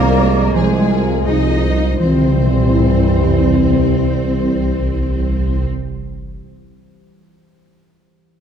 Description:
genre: cinematic, hybrid orchestral and electronic film score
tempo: 83 BPM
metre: 4/4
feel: straight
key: unclear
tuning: A4 = 440 Hz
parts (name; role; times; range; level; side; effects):
- rich studio violin section; melody; 0.0-5.6 s; Ab5 to Eb6; -30 LUFS; left 5 dB; low-pass filter
- warm studio violin section; second line; 0.0-5.7 s; Ab4 to Eb5; -26 LUFS; left 3 dB; none
- warm symphonic viola section; accompaniment; 0.0-5.7 s; E4 to D5; -24 LUFS; right 1 dB; low-pass filter
- clear trombone section; sustained chords; 0.0-5.7 s; E3 to Ab3; -24 LUFS; right 4 dB; low-pass filter
- deep dark ambient pad; sustained chords; 0.2-5.7 s; E3 to C5; -25 LUFS; left 2 dB; none
- mellow French horn section; sustained chords; 0.0-5.7 s; Ab3 to Eb4; -23 LUFS; left 6 dB; low-pass filter
- soft round pluck; arpeggios; 0.0-1.9 s; F3 to F4; -26 LUFS; right 3 dB; none
- dark symphonic double bass section; bass; 0.0-5.7 s; C2; -21 LUFS; right 3 dB; none
- mellow tuba; bass; 0.0-5.7 s; C2; -22 LUFS; right 3 dB; none
- warm sub bass; bass; 0.0-5.7 s; C2; -21 LUFS; left 1 dB; none
- warm symphonic cello section; bass; 0.0-5.7 s; Ab3 to Eb4; -22 LUFS; right 1 dB; none
- dark concert grand piano; texture; 0.0-2.0 s; none; barely audible; none; none
- sub drop; sound effects; 2.0-6.4 s; none; -20 LUFS; left 1 dB; none
room: moderate scoring stage reverb, RT60 1.9 s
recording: dark, warm production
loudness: -13 LUFS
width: side -8 dB against mid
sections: 0.0-2.0 A section; 2.0-4.9 B section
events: filter sweep 0.0-2.0; impact 2.0-4.9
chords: 0.0 Fm/C; 2.0 C

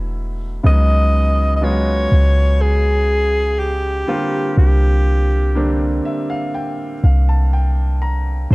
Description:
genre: contemporary R&B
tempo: 61 BPM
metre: 4/4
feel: straight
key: unclear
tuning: A4 = 442 Hz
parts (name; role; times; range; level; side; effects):
- warm baby grand piano; accompaniment; 0.0-8.5 s; Db3 to Bb5; -22 LUFS; equal; none
- clean 808-style bass; bass; 0.0-8.5 s; E1 to D2; -15 LUFS; equal; none
- breathy alto saxophone; melody; 0.7-8.5 s; G4 to Eb5; -20 LUFS; equal; slapback echo
room: small room ambience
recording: dark, warm production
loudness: -14 LUFS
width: side -23 dB against mid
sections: 0.0-8.5 A section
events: grand piano fill 5.6-8.5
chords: 0.0 E9sus4; 0.6 Db9sus4; 4.1 C9sus4

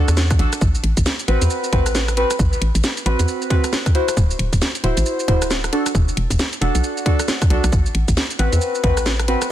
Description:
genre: UK garage, two-step garage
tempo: 135 BPM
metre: 4/4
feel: swing 61% on 16ths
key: A dorian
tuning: A4 = 438 Hz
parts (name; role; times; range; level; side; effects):
- deep mellow chord stab; stabs; 0.0-9.4 s; C4 to C5; -22 LUFS; equal; lush chorus, dub echo
- hollow knocking FM bass; bass; 0.1-9.4 s; D1 to E2; -19 LUFS; equal; none
- garage drum kit; drums; 0.1-9.5 s; hi-hat, rim click, shaker, snare drum; -23 LUFS; equal; studio reverb
- electronic kick drum; drums; 0.3-8.9 s; none; -18 LUFS; equal; studio reverb
room: light reverb, digital ambience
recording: dense, heavily limited modern master, vinyl crackle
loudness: -16 LUFS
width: side -12 dB against mid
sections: 0.0-9.5 A section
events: none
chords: 0.0 E9sus4; 0.6 Am69; 3.9 D9; 5.7 E9sus4; 7.7 Am69

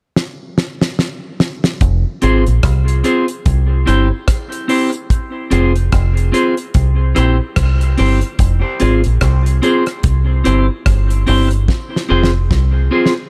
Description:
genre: dub reggae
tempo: 73 BPM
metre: 4/4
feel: swing 58% on 16ths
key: F harmonic minor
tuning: A4 = 439 Hz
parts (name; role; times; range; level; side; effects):
- damped 70s drum kit; drums; 0.2-13.3 s; hi-hat, kick drum, rim click, snare drum; -19 LUFS; equal; none
- deep dub fingered electric bass; bass; 1.8-12.9 s; F1 to C2; -16 LUFS; equal; none
- clean electric guitar; accompaniment; 2.2-13.1 s; C4 to C5; -19 LUFS; equal; dub echo
room: little or no reverb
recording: echo-heavy mix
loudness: -15 LUFS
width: mono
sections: 0.0-1.8 A section; 1.8-13.3 B section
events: drum fill 0.2-1.8, 11.7-13.3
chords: 0.0 N.C.; 1.8 Fm; 3.5 C; 5.1 Fm; 6.7 C; 8.4 Fm; 10.0 C; 11.7 Fm

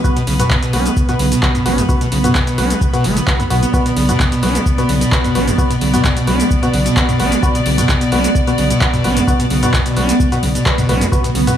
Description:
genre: acid house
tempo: 130 BPM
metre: 4/4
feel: swing 53% on 16ths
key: B minor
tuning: A4 = 440 Hz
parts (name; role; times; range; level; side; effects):
- clear studio string section; sustained chords; 0.0-11.6 s; B3 to D5; -23 LUFS; equal; sidechain pumping
- percussive organ stab; stabs; 0.0-11.6 s; B3 to B4; -22 LUFS; left 1 dB; lush chorus, tape echo
- electro analog drum machine; drums; 0.0-11.6 s; handclaps, hi-hat, shaker, toms; -20 LUFS; equal; none
- electronic kick drum; drums; 0.0-11.2 s; none; -17 LUFS; equal; none
- granular cloud pad; texture; 0.0-11.6 s; B3 to B5; -21 LUFS; right 2 dB; built-in reverb, sidechain pumping
- acid bass, saw; riff; 0.2-11.6 s; B2 to D4; -19 LUFS; equal; overdrive, lush chorus, cassette tape, tape echo
- saturated sub bass; bass; 0.3-11.5 s; F#1 to B1; -19 LUFS; equal; sidechain pumping
room: moderate studio reverb, RT60 0.5 s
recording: small room reverb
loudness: -12 LUFS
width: side -10 dB against mid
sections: 0.0-11.6 A section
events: drum fill 10.8-11.1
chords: 0.0 B5

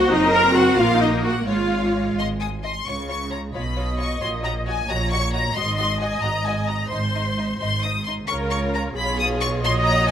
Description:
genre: quick classical-period movement for string orchestra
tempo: 88 BPM (dotted quarters)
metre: 6/8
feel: straight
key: Db major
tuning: A4 = 441 Hz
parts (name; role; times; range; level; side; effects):
- rich symphonic violin section; melody; 0.0-10.1 s; Bb4 to Eb6; -26 LUFS; left 3 dB; none
- rich symphonic violin section; second line; 0.0-10.1 s; Eb4 to Bb5; -29 LUFS; left 2 dB; none
- clear symphonic viola section; accompaniment; 0.0-10.1 s; Eb4 to Eb5; -23 LUFS; equal; none
- rich symphonic cello section; bass; 0.0-10.1 s; Ab2 to C4; -26 LUFS; right 2 dB; none
- rich symphonic double bass section; bass; 0.0-10.1 s; Gb1 to Db2; -27 LUFS; right 2 dB; none
room: light reverb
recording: close, detailed microphones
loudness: -19 LUFS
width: side -9 dB against mid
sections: 0.0-2.9 A section; 2.9-10.1 B section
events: none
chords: 0.1 Ebm69/Gb; 1.5 Db/Ab; 2.2 Ab5; 2.9 Db; 3.5 Db7/Cb; 4.2 Gb/Bb; 4.9 Ebm7/Bb; 5.6 Ab5; 6.9 Ab; 8.3 Db; 9.0 Db7/Cb

